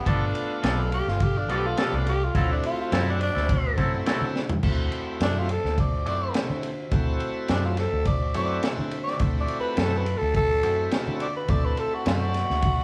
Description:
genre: straight-eighth soul blues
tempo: 105 BPM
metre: 4/4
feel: straight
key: D mixolydian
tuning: A4 = 440 Hz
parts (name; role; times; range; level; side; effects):
- raspy tenor saxophone; second line; 0.0-12.8 s; D4 to D5; -30 LUFS; equal; none
- warm horn section; sustained chords; 0.0-12.8 s; F#4 to F5; -40 LUFS; equal; none
- bright tonewheel organ; accompaniment; 0.1-12.3 s; A3 to A4; -35 LUFS; equal; slow rotary speaker, overdrive
- twangy electric guitar; stabs; 0.1-4.2 s; F3 to A4; -34 LUFS; equal; none
- vintage muted fingered electric bass; bass; 0.1-12.8 s; G1 to D3; -30 LUFS; equal; none
- crunchy breakbeat drum kit; drums; 0.1-12.8 s; crash cymbal, kick drum, ride cymbal, snare drum, toms; -30 LUFS; equal; none
room: moderate large studio reverb, RT60 1.0 s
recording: band playing live in one room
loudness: -25 LUFS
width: mono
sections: 0.0-4.6 A section; 4.6-12.8 A section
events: tenor saxophone solo 0.0-12.8; drum fill 4.3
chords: 0.1 G9; 2.3 D9

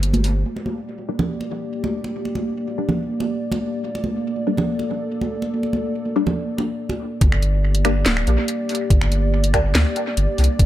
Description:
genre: deep dubstep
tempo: 142 BPM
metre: 4/4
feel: half-time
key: G minor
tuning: A4 = 441 Hz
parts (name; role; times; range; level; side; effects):
- dark analog pad; sustained chords; 0.0-10.7 s; Bb3 to D5; -26 LUFS; equal; chorus
- soft dub sub bass; bass; 0.0-0.4, 7.2-10.7 s; D1 to D2; -18 LUFS; equal; none
- garage drum kit; drums; 0.0-0.3, 7.2-10.7 s; finger snaps, handclaps, hi-hat, snare drum; -24 LUFS; equal; dub echo
- congas; percussion; 0.1-7.0 s; none; -25 LUFS; right 1 dB; dub echo
- filtered dub chord stab; stabs; 1.1-9.6 s; G3 to D4; -25 LUFS; left 2 dB; phaser, wide subtle chorus, dub echo
- electronic kick drum; drums; 7.2-10.7 s; none; -16 LUFS; equal; none
room: light reverb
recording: echo-heavy mix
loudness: -19 LUFS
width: side -13 dB against mid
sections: 0.5-7.2 A section; 7.2-10.7 B section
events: break 0.0-0.5; drop 7.2-10.7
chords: 0.5 Gm

